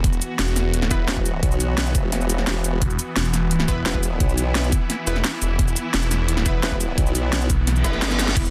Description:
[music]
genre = dark technical drum and bass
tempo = 173 BPM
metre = 4/4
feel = straight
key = unclear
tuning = A4 = 441 Hz
[part]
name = swarming drone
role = sustained chords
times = 0.0-8.5 s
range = E3 to F#4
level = -30 LUFS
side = equal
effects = built-in reverb, sidechain pumping
[part]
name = phased detuned saw bass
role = bass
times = 0.0-8.5 s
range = E1 to B1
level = -25 LUFS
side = equal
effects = phaser
[part]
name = drum and bass drum kit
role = drums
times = 0.0-8.5 s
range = crash cymbal, hi-hat, shaker, snare drum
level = -27 LUFS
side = equal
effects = overdrive
[part]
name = electronic kick drum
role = drums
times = 0.0-8.4 s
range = none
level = -24 LUFS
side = equal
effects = overdrive
[part]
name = orchestra-hit-like synth stab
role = stabs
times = 0.9-7.9 s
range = B3 to B4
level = -33 LUFS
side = equal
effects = built-in reverb, delay
[part]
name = formant-sweep wobble bass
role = bass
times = 1.1-8.4 s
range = E1 to B1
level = -25 LUFS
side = equal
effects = chorus
[part]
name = reverse cymbal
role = sound effects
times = 7.8-8.4 s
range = none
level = -29 LUFS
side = equal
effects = none
[part]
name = analog pluck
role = arpeggios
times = 8.4-8.5 s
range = E4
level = -34 LUFS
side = equal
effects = chorus, sidechain pumping
[sound]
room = light reverb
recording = dense, heavily limited modern master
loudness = -21 LUFS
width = mono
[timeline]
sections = 0.0-8.5 A section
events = reverse cymbal 7.8-8.4; kick drops out 8.0-8.4; drum fill 8.1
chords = 0.0 E5

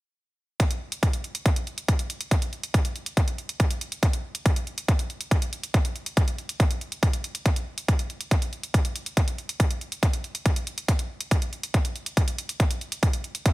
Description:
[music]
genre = psychedelic trance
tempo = 140 BPM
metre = 4/4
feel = straight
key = none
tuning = none
[part]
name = electronic hi-hat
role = drums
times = 0.6-13.5 s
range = none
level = -33 LUFS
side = right 2 dB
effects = overdrive, studio reverb
[part]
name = electronic kick drum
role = drums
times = 0.6-13.5 s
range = none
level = -22 LUFS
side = equal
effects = distortion, overdrive, studio reverb
[part]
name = swell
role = sound effects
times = 13.5 s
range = none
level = -41 LUFS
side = right 1 dB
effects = none
[sound]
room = little or no reverb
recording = none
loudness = -24 LUFS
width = side -20 dB against mid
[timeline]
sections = 0.6-13.5 A section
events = none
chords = none

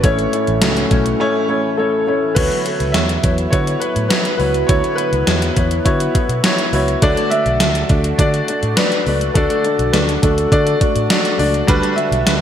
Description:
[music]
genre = 1980s-style pop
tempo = 103 BPM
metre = 4/4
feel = straight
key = unclear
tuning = A4 = 440 Hz
[part]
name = warm concert grand piano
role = melody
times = 0.0-12.4 s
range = A4 to E5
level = -21 LUFS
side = left 1 dB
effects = lush chorus, digital delay
[part]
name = warm baby grand piano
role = accompaniment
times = 0.0-12.4 s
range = A2 to D5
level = -18 LUFS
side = left 1 dB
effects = none
[part]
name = phased analog pad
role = sustained chords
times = 0.0-12.4 s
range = D3 to B4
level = -27 LUFS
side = right 1 dB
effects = phaser, chorus
[part]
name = vintage muted fingered electric bass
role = bass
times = 0.0-12.4 s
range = A1 to D3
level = -20 LUFS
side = equal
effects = none
[part]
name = gated 80s digital drum machine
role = drums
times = 0.0-12.4 s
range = crash cymbal, hi-hat, kick drum, snare drum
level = -18 LUFS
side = equal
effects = gated reverb, gated reverb snare, overdrive
[sound]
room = wet lush hall reverb, RT60 2.5 s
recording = bright 1980s-style digital production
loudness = -14 LUFS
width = side -9 dB against mid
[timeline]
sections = 0.0-2.4 A section; 2.4-12.4 B section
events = none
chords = 0.0 A; 2.4 F#7sus4; 7.0 D; 11.7 Gmaj7

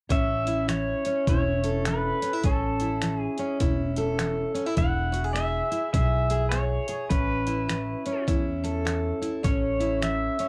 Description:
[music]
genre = honky-tonk and classic country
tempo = 103 BPM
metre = 4/4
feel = swing 62% on 8ths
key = A major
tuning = A4 = 439 Hz
[part]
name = pedal steel guitar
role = melody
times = 0.1-10.5 s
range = A4 to F#5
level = -31 LUFS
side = equal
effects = cassette tape
[part]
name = picked steel-string acoustic guitar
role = accompaniment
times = 0.1-10.5 s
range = A2 to A4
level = -31 LUFS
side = equal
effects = cassette tape
[part]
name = upright bass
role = bass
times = 0.1-10.3 s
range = E1 to E2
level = -32 LUFS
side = equal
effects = none
[part]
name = breakbeat sampler-style drum kit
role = drums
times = 0.1-10.5 s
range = finger snaps, hi-hat, kick drum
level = -31 LUFS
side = equal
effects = cassette tape
[sound]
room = light reverb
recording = home recording on cassette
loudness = -26 LUFS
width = mono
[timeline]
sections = 0.1-10.5 A section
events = none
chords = 0.1 A; 4.8 E; 7.1 A

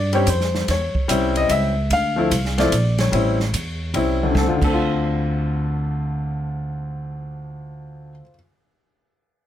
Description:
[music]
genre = jazz piano trio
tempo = 147 BPM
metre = 3/4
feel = swing 65% on 8ths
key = unclear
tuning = A4 = 437 Hz
[part]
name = clear baby grand piano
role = melody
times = 0.0-8.4 s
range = D2 to F5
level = -21 LUFS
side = left 2 dB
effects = none
[part]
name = upright bass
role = bass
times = 0.0-8.2 s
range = A1 to G2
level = -23 LUFS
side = equal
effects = none
[part]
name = open jazz drum kit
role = drums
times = 0.1-4.7 s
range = crash cymbal, hi-hat, kick drum, ride cymbal, snare drum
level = -25 LUFS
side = right 1 dB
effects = none
[sound]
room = light reverb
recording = close, detailed microphones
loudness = -18 LUFS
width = side -11 dB against mid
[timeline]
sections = 0.0-4.3 A section; 4.3-6.8 B section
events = none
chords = 0.0 A7#9 (rootless); 1.9 Dm7; 3.1 A7#9; 4.3 Dm7

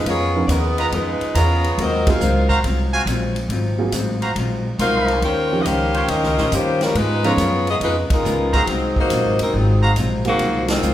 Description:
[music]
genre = jazz, big band swing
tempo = 139 BPM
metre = 4/4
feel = swing 67% on 8ths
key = Ab mixolydian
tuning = A4 = 440 Hz
[part]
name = bright saxophone section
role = melody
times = 0.0-10.9 s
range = Eb3 to G5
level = -20 LUFS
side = left 1 dB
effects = none
[part]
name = warm upright piano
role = accompaniment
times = 0.0-7.4, 10.2-10.8 s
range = F3 to F5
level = -25 LUFS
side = right 3 dB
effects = none
[part]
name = upright bass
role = bass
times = 0.0-10.9 s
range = Gb1 to Ab2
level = -21 LUFS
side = equal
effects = none
[part]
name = vintage hollow-body jazz guitar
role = accompaniment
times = 0.1-10.9 s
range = Ab2 to C5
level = -25 LUFS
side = left 3 dB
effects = none
[part]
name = swinging big-band drum kit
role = drums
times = 0.1-10.9 s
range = hi-hat, kick drum, ride cymbal, snare drum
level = -26 LUFS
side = equal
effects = none
[part]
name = clear trumpet section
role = stabs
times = 0.8-9.9 s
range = F4 to C6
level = -24 LUFS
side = right 2 dB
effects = none
[sound]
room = wet recital hall reverb, RT60 1.4 s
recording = recorded in a church or concert hall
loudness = -16 LUFS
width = side -12 dB against mid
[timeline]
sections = 0.0-10.9 A section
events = band accent 2.0, 8.0, 10.6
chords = 0.0 Db13; 1.8 Ab13; 5.2 Eb13; 6.9 Db13; 8.7 Ab13

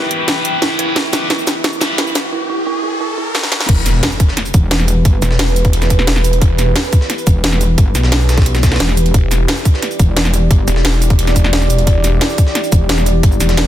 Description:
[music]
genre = dark technical drum and bass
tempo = 176 BPM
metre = 4/4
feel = straight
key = E minor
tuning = A4 = 439 Hz
[part]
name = deep dark ambient pad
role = sustained chords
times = 0.0-13.7 s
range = E4 to G5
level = -22 LUFS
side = right 1 dB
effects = chorus, built-in reverb, sidechain pumping
[part]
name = dark detuned synth bell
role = arpeggios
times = 0.0-3.6 s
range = E4 to B4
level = -22 LUFS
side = right 4 dB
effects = chorus, sidechain pumping, ping-pong delay
[part]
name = high-gain distorted guitar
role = stabs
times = 0.0-2.0 s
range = E4 to B4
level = -20 LUFS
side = left 1 dB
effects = distortion, low-pass filter, ping-pong delay
[part]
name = riser and impact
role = sound effects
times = 0.1-5.1 s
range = none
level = -26 LUFS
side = equal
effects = none
[part]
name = drum and bass drum kit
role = drums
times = 0.1-13.6 s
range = cabasa, crash cymbal, hi-hat, snare drum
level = -18 LUFS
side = equal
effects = overdrive
[part]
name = snarling distorted saw bass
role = bass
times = 3.7-6.7, 9.1-12.2 s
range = E1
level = -14 LUFS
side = equal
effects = distortion, sidechain pumping
[part]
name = breakbeat sampler-style drum kit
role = drums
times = 3.7-13.7 s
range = hi-hat, snare drum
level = -25 LUFS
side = equal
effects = high-pass filter on hats, high-pass filter on snare, high-pass filter on room
[part]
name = electronic kick drum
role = drums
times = 3.7-13.3 s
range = none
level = -11 LUFS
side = equal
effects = overdrive
[part]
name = metallic wobble bass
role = bass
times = 4.5-5.2, 7.3-10.7, 12.7-13.7 s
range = E1 to B1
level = -14 LUFS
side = equal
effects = chorus
[sound]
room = light reverb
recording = dense, heavily limited modern master, high-pass filter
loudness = -11 LUFS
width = side -12 dB against mid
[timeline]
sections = 0.0-3.7 A section; 3.7-13.7 B section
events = build-up 0.0-3.7; drum fill 0.0-2.3, 3.3-3.7; riser 0.1-3.7; drop 3.7-13.7; impact 3.7-5.1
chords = 0.0 Em

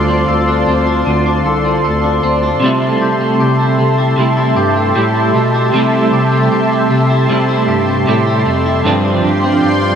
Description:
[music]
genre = dream pop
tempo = 77 BPM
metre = 4/4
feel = straight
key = C major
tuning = A4 = 440 Hz
[part]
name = lush unison pad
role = sustained chords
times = 0.0-10.0 s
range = F4 to C6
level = -16 LUFS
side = equal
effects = chorus
[part]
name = clean electric guitar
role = arpeggios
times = 0.0-10.0 s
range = G2 to A4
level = -16 LUFS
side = left 2 dB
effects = wide subtle chorus, analog delay
[part]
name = mellow bass clarinet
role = bass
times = 0.0-10.0 s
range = C2 to C3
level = -17 LUFS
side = equal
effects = none
[part]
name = clean electric guitar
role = accompaniment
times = 2.6-10.0 s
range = G2 to E4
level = -16 LUFS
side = right 3 dB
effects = tremolo, analog chorus
[sound]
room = wet cathedral reverb, RT60 6.4 s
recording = dreamy mix soaked in reverb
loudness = -11 LUFS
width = side -8 dB against mid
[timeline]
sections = 0.0-10.0 A section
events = none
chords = 0.0 Dm7; 2.6 C6; 8.8 G7sus4

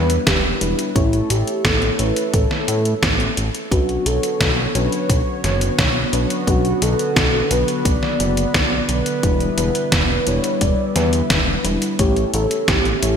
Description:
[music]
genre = synthwave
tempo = 87 BPM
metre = 4/4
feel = straight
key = B minor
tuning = A4 = 438 Hz
[part]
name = warm velvety synth lead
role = melody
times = 0.0-13.2 s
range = E4 to D5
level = -23 LUFS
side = equal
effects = chorus, ping-pong delay
[part]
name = chorused pulse-width pad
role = sustained chords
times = 0.0-13.2 s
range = D3 to C#5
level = -26 LUFS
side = right 2 dB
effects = sidechain pumping
[part]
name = mellow FM electric piano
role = stabs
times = 0.0-13.2 s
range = F#3 to C#5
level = -26 LUFS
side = left 5 dB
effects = chorus
[part]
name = fat analog bass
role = bass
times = 0.0-13.2 s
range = E1 to A2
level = -22 LUFS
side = equal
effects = tube saturation
[part]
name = detuned 8-bit digital drum machine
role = drums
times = 0.1-13.2 s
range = hi-hat, snare drum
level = -21 LUFS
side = equal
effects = gated reverb
[part]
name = electronic kick drum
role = drums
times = 0.3-12.8 s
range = none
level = -22 LUFS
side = equal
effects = none
[sound]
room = moderate lush hall reverb, RT60 2.5 s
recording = bright 1980s-style digital production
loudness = -16 LUFS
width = side -7 dB against mid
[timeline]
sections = 0.0-13.2 A section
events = none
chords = 0.0 Em7; 1.0 A; 3.7 Bmadd9; 9.2 Em7; 12.0 A

